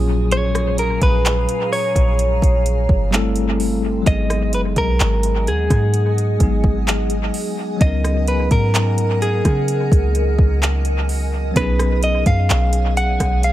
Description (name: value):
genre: contemporary R&B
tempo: 64 BPM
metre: 4/4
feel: straight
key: G# dorian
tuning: A4 = 440 Hz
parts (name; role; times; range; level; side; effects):
- bell-like tine electric piano; accompaniment; 0.0-13.5 s; A#2 to A#4; -24 LUFS; left 2 dB; medium stereo tremolo, analog delay
- granular cloud pad; sustained chords; 0.0-13.5 s; G#4 to A#5; -29 LUFS; equal; built-in reverb
- clean 808-style bass; bass; 0.0-13.5 s; F#1 to C#3; -18 LUFS; equal; none
- direct-recorded clean electric guitar; melody; 0.3-13.5 s; G#4 to F#5; -22 LUFS; right 1 dB; analog delay
- smooth R&B drum kit; drums; 0.3-13.5 s; handclaps, hi-hat, kick drum, rim click; -20 LUFS; equal; overdrive, analog delay
room: little or no reverb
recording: echo-heavy mix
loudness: -15 LUFS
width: side -14 dB against mid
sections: 0.0-13.5 A section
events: none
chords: 0.0 F#maj9/A#; 3.1 Am7; 4.1 G#m7; 7.8 C#13sus4; 11.6 B69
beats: | 0.31 1.25 2.19 3.12 | 4.06 5.00 5.94 6.87 | 7.81 8.75 9.69 10.62 | 11.56 12.50 13.44